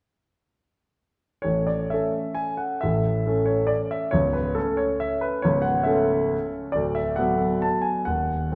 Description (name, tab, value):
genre	classical, piano waltz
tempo	127-147 BPM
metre	3/4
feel	rubato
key	A major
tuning	A4 = 441 Hz
part	clear grand piano	solo	1.4-8.6 s	C#1 to A5	-24 LUFS	equal	none
room	wet recital hall reverb, RT60 1.8 s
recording	recorded in a church or concert hall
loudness	-24 LUFS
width	mono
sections	1.4-8.6 A section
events	none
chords	1.4 A; 4.1 A/C#; 6.8 Bm7/D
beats	| 1.45 1.91 2.38 | 2.82 3.26 3.70 | 4.14 4.57 5.01 | 5.46 5.89 6.34 | 6.76 7.19 7.65 | 8.08 8.53